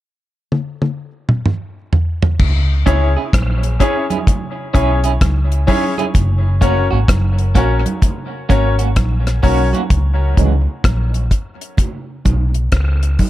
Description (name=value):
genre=dub reggae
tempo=64 BPM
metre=4/4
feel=swing 64% on 16ths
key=C# dorian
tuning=A4 = 440 Hz
part: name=deep reggae drum kit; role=drums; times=0.5-13.3 s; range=crash cymbal, hi-hat, kick drum, rim click, toms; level=-16 LUFS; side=equal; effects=none
part: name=vintage muted fingered electric bass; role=bass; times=2.4-13.2 s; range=F#1 to C#2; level=-15 LUFS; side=equal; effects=none
part: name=congas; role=percussion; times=2.4-13.3 s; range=none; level=-26 LUFS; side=right 4 dB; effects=tape echo
part: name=electric guitar at the edge of break-up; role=accompaniment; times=2.9-10.5 s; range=E3 to G#4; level=-23 LUFS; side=right 7 dB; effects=tremolo, low-pass filter, tape echo
part: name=clear baby grand piano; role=stabs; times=2.9-9.7 s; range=C#4 to C#5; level=-21 LUFS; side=left 4 dB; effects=low-pass filter, tape echo
room=small room ambience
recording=none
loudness=-14 LUFS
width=side -14 dB against mid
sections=0.0-2.4 A section; 2.4-9.9 B section; 9.9-13.3 C section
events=drum fill 0.5-2.4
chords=0.0 N.C.; 2.4 C#m; 6.2 F#; 9.9 N.C.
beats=0.52 1.46 | 2.40 3.33 4.27 5.21 | 6.15 7.09 8.03 8.97 | 9.91 10.85 11.79 12.72